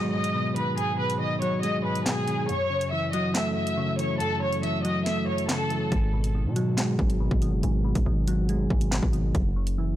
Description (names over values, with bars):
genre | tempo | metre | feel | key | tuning
hip hop, drill | 140 BPM | 4/4 | half-time | G# phrygian | A4 = 435 Hz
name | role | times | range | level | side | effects
warm studio violin section | melody | 0.0-5.9 s | G#4 to E6 | -28 LUFS | left 1 dB | low-pass filter, tape echo
soft electric-piano-like synth keys | accompaniment | 0.0-10.0 s | F#2 to A3 | -27 LUFS | equal | chorus, low-pass filter
drill drum kit | drums | 0.2-9.8 s | handclaps, hi-hat, kick drum, snare drum | -29 LUFS | equal | none
hard-hitting 808-style bass | bass | 5.9-10.0 s | F#1 to B2 | -26 LUFS | equal | none
room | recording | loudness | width
digital ambience | blown-out, overdriven recording, overdrive | -23 LUFS | side -13 dB against mid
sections
0.0-10.0 A section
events
break 0.0-5.9; kick muted 5.1-5.9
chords
0.0 G#m7; 2.5 F#m7; 5.9 G#m7; 9.3 F#7(no3)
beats
0.35 | 0.78 1.20 1.63 2.06 | 2.49 2.92 3.35 3.78 | 4.20 4.63 5.06 5.49 | 5.92 6.35 6.78 7.20 | 7.63 8.06 8.49 8.92 | 9.35 9.78